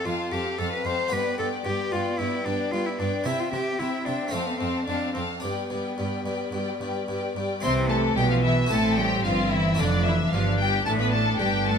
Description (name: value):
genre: classical, baroque-style concerto movement with solo episodes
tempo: 112 BPM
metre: 4/4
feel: straight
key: C major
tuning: A4 = 440 Hz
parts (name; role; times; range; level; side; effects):
- rich cello; melody; 0.0-11.8 s; D3 to C5; -28 LUFS; left 1 dB; none
- rich chamber violin section; melody; 0.0-11.8 s; D5 to C6; -32 LUFS; left 4 dB; none
- rich chamber violin section; second line; 0.0-11.8 s; D4 to F5; -31 LUFS; left 3 dB; none
- harpsichord; accompaniment; 0.0-11.8 s; F2 to F4; -33 LUFS; right 1 dB; none
- rich chamber viola section; accompaniment; 0.0-11.8 s; E3 to D4; -33 LUFS; left 3 dB; none
- clear chamber cello section; bass; 0.0-11.8 s; F2 to C3; -30 LUFS; right 3 dB; none
- clear chamber double bass section; bass; 7.6-11.8 s; F1 to C2; -28 LUFS; right 4 dB; none
room: moderate recital hall reverb, RT60 1.4 s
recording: close, detailed microphones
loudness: -23 LUFS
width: side -7 dB against mid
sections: 0.0-7.6 A section; 7.6-11.8 B section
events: none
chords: 0.0 F; 1.1 G; 3.3 C; 4.3 F; 5.4 G; 7.6 C; 8.7 Am; 9.8 Dm/F